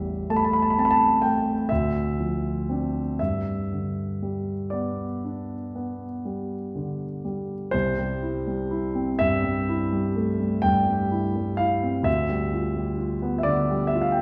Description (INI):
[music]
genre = classical, romantic nocturne for solo piano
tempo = 39-45 BPM (dotted quarters)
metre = 9/8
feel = rubato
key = C major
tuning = A4 = 440 Hz
[part]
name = warm grand piano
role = solo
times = 0.0-14.2 s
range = A1 to B5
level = -25 LUFS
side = equal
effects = none
[sound]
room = wet recital hall reverb, RT60 1.6 s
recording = heard from further back in the room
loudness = -25 LUFS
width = mono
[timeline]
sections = 0.0-7.7 A section; 7.7-14.2 B section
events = none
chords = 0.0 Am7; 1.7 Dm7; 3.2 G; 7.7 C; 12.1 G7/D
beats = 0.28 1.70 | 3.19 4.72 6.25 | 7.74 9.21 10.64 | 12.06 13.46